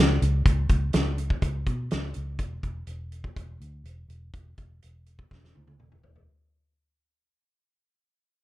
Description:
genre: rock, shoegaze and dream pop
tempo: 124 BPM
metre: 4/4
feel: straight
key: unclear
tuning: A4 = 440 Hz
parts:
  - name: vintage muted fingered electric bass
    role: bass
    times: 0.0-6.3 s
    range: E1 to B2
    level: -28 LUFS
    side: equal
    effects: none
  - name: loose indie drum kit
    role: drums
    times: 0.2-6.3 s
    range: hi-hat, kick drum, snare drum, toms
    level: -23 LUFS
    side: equal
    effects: none
room: little or no reverb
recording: dark, warm production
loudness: -24 LUFS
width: side -16 dB against mid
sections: 0.0-6.3 A section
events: fade-out 0.0-6.3; drum fill 5.3-6.3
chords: none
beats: | 0.45 0.93 1.42 1.90 | 2.39 2.88 3.36 3.85 | 4.33 4.82 5.30 5.79

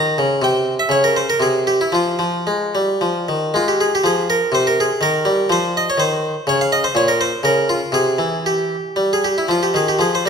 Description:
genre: classical, baroque-style suite movement for harpsichord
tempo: 108-127 BPM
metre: 3/4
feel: rubato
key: F minor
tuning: A4 = 438 Hz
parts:
  - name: harpsichord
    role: solo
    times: 0.0-10.3 s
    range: Bb2 to Bb5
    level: -15 LUFS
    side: equal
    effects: none
room: wet recital hall reverb, RT60 1.7 s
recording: none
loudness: -15 LUFS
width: side -6 dB against mid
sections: 0.0-3.5 A section; 3.5-10.3 B section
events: none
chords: 0.4 N.C.; 1.9 Fm; 5.0 Cm/Eb; 6.5 Bbm; 7.9 C; 9.5 Fm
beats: | 0.41 0.89 1.38 | 1.92 2.47 3.01 | 3.54 4.04 4.54 | 5.01 5.51 6.00 | 6.48 6.97 7.45 | 7.93 8.44 8.96 | 9.48 9.99

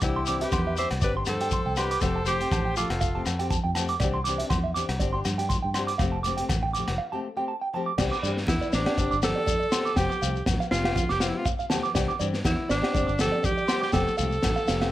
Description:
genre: highlife guitar band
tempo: 121 BPM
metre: 4/4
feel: swing 54% on 16ths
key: C major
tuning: A4 = 440 Hz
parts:
  - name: warm alto saxophone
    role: melody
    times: 0.0-3.5, 8.5-14.9 s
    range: D4 to C5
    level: -29 LUFS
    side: equal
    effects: plate reverb
  - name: breathy trumpet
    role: second line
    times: 0.0-3.5 s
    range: G4 to E5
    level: -35 LUFS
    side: left 4 dB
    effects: plate reverb
  - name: nylon-string guitar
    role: accompaniment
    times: 0.0-14.9 s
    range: E3 to G4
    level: -33 LUFS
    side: left 5 dB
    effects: none
  - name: electric guitar through a small old amp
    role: arpeggios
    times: 0.0-14.9 s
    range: D5 to D6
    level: -30 LUFS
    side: right 5 dB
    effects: slapback echo, plate reverb
  - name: fingered electric bass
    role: bass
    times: 0.0-14.9 s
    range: F1 to G2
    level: -30 LUFS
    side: equal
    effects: none
  - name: crunchy breakbeat drum kit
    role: drums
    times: 0.0-14.9 s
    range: crash cymbal, hi-hat, kick drum, rim click, snare drum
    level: -30 LUFS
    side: equal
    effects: none
  - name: agogo bells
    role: percussion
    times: 0.0-14.9 s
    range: none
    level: -38 LUFS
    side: left 5 dB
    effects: none
  - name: congas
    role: percussion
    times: 0.0-14.6 s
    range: none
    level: -36 LUFS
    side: right 2 dB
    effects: none
  - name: shekere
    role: percussion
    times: 0.0-14.9 s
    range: none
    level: -34 LUFS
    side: left 4 dB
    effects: none
room: light reverb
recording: none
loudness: -23 LUFS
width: side -14 dB against mid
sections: 0.0-8.0 A section; 8.0-14.9 B section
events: break 7.0-8.0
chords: 0.0 Cadd9; 1.0 Gsus4; 2.0 Fadd9; 4.0 Cadd9; 5.0 Gsus4; 6.0 Fadd9; 8.0 Cadd9; 9.0 Gsus4; 10.0 Fadd9; 12.0 Cadd9; 12.9 Gsus4; 13.9 Fadd9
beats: | 0.03 0.53 1.02 1.52 | 2.02 2.52 3.01 3.51 | 4.01 4.51 5.00 5.50 | 6.00 6.50 6.99 7.49 | 7.99 8.48 8.98 9.47 | 9.97 10.47 10.96 11.46 | 11.95 12.45 12.95 13.44 | 13.94 14.44

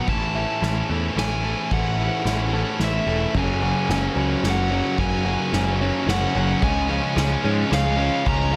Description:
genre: post-rock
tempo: 110 BPM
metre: 3/4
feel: straight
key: unclear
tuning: A4 = 439 Hz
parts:
  - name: crunchy overdriven guitar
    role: melody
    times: 0.0-8.6 s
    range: E5 to A#5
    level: -30 LUFS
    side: equal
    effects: digital delay
  - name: felt-muted upright piano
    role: arpeggios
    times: 0.0-8.6 s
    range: A4 to F#5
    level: -38 LUFS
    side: equal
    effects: digital delay
  - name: twelve-string electric guitar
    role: arpeggios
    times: 0.0-8.6 s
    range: F#2 to A3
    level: -32 LUFS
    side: equal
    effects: none
  - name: distorted electric guitar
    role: riff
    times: 0.0-8.6 s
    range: F#2 to E4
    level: -29 LUFS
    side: equal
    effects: overdrive
  - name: growling picked electric bass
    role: bass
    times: 0.1-8.6 s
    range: E1 to G#2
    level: -27 LUFS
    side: equal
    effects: overdrive
  - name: soft-mallet drum kit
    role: drums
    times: 0.1-8.4 s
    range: crash cymbal, kick drum, ride cymbal, snare drum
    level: -30 LUFS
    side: equal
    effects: none
  - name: distorted electric guitar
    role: riff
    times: 3.3-8.6 s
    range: F#2 to C#4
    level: -29 LUFS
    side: equal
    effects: distortion
room: small room ambience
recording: none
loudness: -22 LUFS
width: mono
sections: 0.0-8.6 A section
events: build-up 0.0-8.6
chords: 0.1 A; 3.4 F#; 6.6 C#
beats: | 0.08 0.62 1.17 | 1.72 2.26 2.81 | 3.35 3.90 4.45 | 4.99 5.54 6.08 | 6.63 7.17 7.72 | 8.26

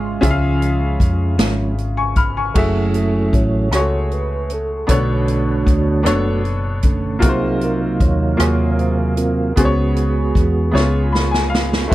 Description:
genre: slow gospel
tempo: 51 BPM (dotted quarters)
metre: 6/8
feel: straight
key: F# minor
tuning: A4 = 440 Hz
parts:
  - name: clean electric guitar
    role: second line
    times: 0.0-0.8 s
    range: G#3 to E#4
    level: -28 LUFS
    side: right 10 dB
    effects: none
  - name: bright baby grand piano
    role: accompaniment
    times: 0.0-11.9 s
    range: B2 to E#6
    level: -21 LUFS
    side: left 2 dB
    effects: none
  - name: hollow-body short-scale fingered electric bass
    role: bass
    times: 0.0-11.9 s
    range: F#1 to E#2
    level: -20 LUFS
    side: equal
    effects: none
  - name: percussive tonewheel organ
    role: sustained chords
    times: 0.2-11.9 s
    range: B#2 to E#5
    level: -21 LUFS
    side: right 3 dB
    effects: slow rotary speaker, chorus vibrato
  - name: swinging big-band drum kit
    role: drums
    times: 0.2-11.9 s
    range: crash cymbal, hi-hat, kick drum, rim click, snare drum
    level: -18 LUFS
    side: equal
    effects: none
room: little or no reverb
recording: none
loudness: -15 LUFS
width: side -16 dB against mid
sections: 0.0-2.6 A section; 2.6-11.9 B section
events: tonewheel organ solo 2.6-11.9; drum fill 10.7-11.9; grand piano fill 10.7-11.9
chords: 0.0 C#; 2.6 F#m9; 4.9 Bm9; 7.2 G#13/B#; 9.6 C#7sus4; 10.7 C#7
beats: | 0.22 1.39 | 2.55 3.72 | 4.89 6.06 | 7.23 8.40 | 9.57 10.74 | 11.91

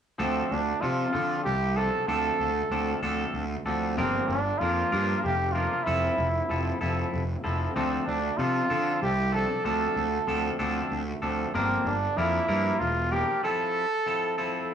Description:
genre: rock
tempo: 63 BPM (dotted quarters)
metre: 6/8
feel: straight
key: D minor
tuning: A4 = 439 Hz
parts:
  - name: breathy trumpet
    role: melody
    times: 0.2-14.7 s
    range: C4 to A4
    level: -28 LUFS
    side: right 2 dB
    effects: cassette tape, analog delay
  - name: twangy electric guitar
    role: riff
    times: 0.2-14.7 s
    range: F3 to Bb4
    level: -30 LUFS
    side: left 5 dB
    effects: cassette tape
  - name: fuzz picked electric bass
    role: bass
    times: 0.2-13.2 s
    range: E1 to D3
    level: -29 LUFS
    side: right 1 dB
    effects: overdrive
room: light reverb, small room ambience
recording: home recording on cassette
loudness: -24 LUFS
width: side -8 dB against mid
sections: 0.2-14.7 A section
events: break 13.4-14.7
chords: 0.2 Dm7; 4.0 Gm7; 5.9 Fmaj7; 7.8 Dm7; 11.5 Gm7; 13.4 Fmaj7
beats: | 0.19 1.14 | 2.08 3.03 | 3.98 4.92 | 5.87 6.82 | 7.76 8.71 | 9.65 10.60 | 11.54 12.49 | 13.43 14.38

